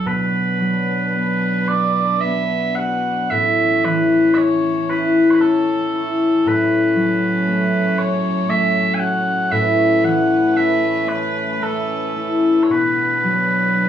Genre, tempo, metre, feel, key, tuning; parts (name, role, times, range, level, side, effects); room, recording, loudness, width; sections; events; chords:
celtic folk, Celtic slow air; 57 BPM; 3/4; rubato; A4 = 440 Hz
mellow small bagpipes; melody; 0.0-13.9 s; A4 to G#5; -20 LUFS; right 2 dB
concert harp; accompaniment; 0.0-13.9 s; D2 to F#4; -18 LUFS; left 2 dB
rich chamber string section; sustained chords; 0.1-13.9 s; A2 to B4; -28 LUFS; right 1 dB
moderate studio ambience, RT60 0.5 s; band playing live in one room, small room reverb; -15 LUFS; side -9 dB against mid
0.1-13.9 A section
0.1 Bm; 3.3 A; 6.5 F#m/A; 9.5 Aadd9; 12.7 Bm